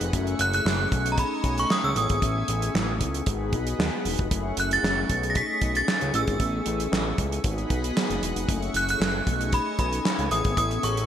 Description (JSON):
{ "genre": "early-eighties boogie funk", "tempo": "115 BPM", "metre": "4/4", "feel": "straight", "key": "unclear", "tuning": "A4 = 440 Hz", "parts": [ { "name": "mellow synth brass", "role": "accompaniment", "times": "0.0-11.1 s", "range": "A3 to G#4", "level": "-31 LUFS", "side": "left 3 dB", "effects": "chorus" }, { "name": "lush unison pad", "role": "sustained chords", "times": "0.0-11.1 s", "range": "A3 to C#6", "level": "-35 LUFS", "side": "left 1 dB", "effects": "chorus" }, { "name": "fat analog bass", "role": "bass", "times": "0.0-11.0 s", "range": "E1 to D#2", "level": "-29 LUFS", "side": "equal", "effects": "none" }, { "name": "damped 70s drum kit", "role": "drums", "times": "0.0-11.1 s", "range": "handclaps, hi-hat, kick drum, snare drum", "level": "-27 LUFS", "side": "right 1 dB", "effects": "gated reverb" }, { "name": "synth chime", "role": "melody", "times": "0.4-11.1 s", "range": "A#5 to B6", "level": "-27 LUFS", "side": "right 1 dB", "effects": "ensemble chorus, tremolo" } ], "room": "light reverb", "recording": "bright 1980s-style digital production", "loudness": "-22 LUFS", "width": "side -10 dB against mid", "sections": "0.0-11.1 A section", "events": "none", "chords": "0.1 F#m7; 0.9 B13; 2.0 Amaj7; 3.3 G#m7; 4.3 F#m7; 5.1 B13; 6.1 Amaj7; 7.4 G#m7; 8.5 F#m7; 9.3 B13; 10.3 Amaj7" }